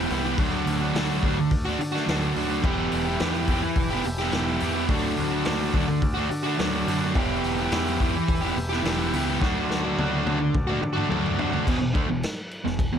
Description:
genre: garage rock duo or trio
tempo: 106 BPM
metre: 4/4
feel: straight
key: E minor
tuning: A4 = 443 Hz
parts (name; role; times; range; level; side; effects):
- combo organ; sustained chords; 0.0-11.6 s; F#4 to E5; -35 LUFS; left 2 dB; spring reverb
- overdriven electric guitar; riff; 0.0-13.0 s; E2 to G4; -24 LUFS; right 1 dB; none
- growling picked electric bass; bass; 0.0-13.0 s; E1 to D3; -30 LUFS; equal; overdrive
- vintage drum kit; drums; 0.1-12.9 s; crash cymbal, hi-hat, kick drum, snare drum, toms; -28 LUFS; equal; none
room: little or no reverb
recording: none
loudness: -22 LUFS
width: side -8 dB against mid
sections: 0.0-11.7 A section; 11.7-13.0 B section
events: drum fill 9.4-11.7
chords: 0.4 D; 2.6 Em; 4.9 D; 7.2 Em; 9.4 D; 11.7 E5

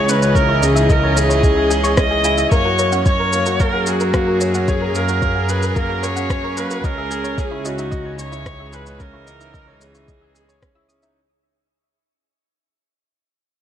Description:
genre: piano and strings electronica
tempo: 111 BPM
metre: 4/4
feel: straight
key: C# dorian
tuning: A4 = 440 Hz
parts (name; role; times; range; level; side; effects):
- dark viola; melody; 0.0-10.9 s; F#4 to D#5; -20 LUFS; equal; shimmer reverb
- rich string quartet; sustained chords; 0.0-11.2 s; C#3 to D#5; -26 LUFS; right 2 dB; sidechain pumping, shimmer reverb
- clear baby grand piano; riff; 0.0-11.2 s; A#3 to D#5; -23 LUFS; right 1 dB; shimmer reverb
- rich studio double bass section; bass; 0.0-11.1 s; C#2 to F#2; -22 LUFS; equal; sidechain pumping
- electronic shaker and rim click; drums; 0.1-11.1 s; none; -26 LUFS; equal; overdrive
- soft round pluck; arpeggios; 0.3-11.2 s; A#4 to E6; -28 LUFS; left 3 dB; chorus, sidechain pumping, tape echo, shimmer reverb
- electronic kick drum; drums; 0.4-10.7 s; none; -19 LUFS; equal; overdrive
room: light reverb, small room ambience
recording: none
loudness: -15 LUFS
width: side -10 dB against mid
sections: 0.0-11.2 A section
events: drop 0.0-11.2; fade-out 2.5-11.2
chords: 0.0 C#madd9; 2.5 F#add9; 6.8 C#madd9

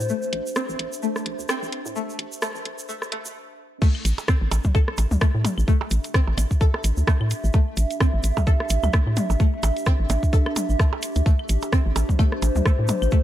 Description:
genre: minimal techno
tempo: 129 BPM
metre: 4/4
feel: swing 57% on 16ths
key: A minor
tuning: A4 = 439 Hz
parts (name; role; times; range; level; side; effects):
- hollow knocking FM bass; bass; 0.0-13.1 s; A1 to A2; -22 LUFS; equal; sidechain pumping
- egg shaker; percussion; 0.0-13.2 s; none; -37 LUFS; right 4 dB; none
- warbly tape-like pad; texture; 0.0-13.2 s; D4 to E5; -31 LUFS; equal; chorus, built-in reverb, sidechain pumping
- string-like resonator pluck; riff; 0.1-13.2 s; A3 to A4; -31 LUFS; left 2 dB; phaser, lush chorus, sidechain pumping, digital delay
- garage drum kit; drums; 0.3-13.0 s; crash cymbal, hi-hat, rim click; -29 LUFS; equal; none
- electronic kick drum; drums; 3.8-13.2 s; none; -18 LUFS; equal; none
- electronic claves, percussion blips and toms; percussion; 3.9-13.1 s; none; -30 LUFS; equal; ping-pong delay
room: light reverb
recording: dark, warm production, high-pass filter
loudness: -20 LUFS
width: side -13 dB against mid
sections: 0.0-3.8 A section; 3.8-13.2 B section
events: build-up 0.0-3.8; filter sweep on synth pluck 0.0-3.8; filter sweep 0.0-3.8; stop 3.4-3.8; drop 3.8-13.2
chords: 0.0 Asus4

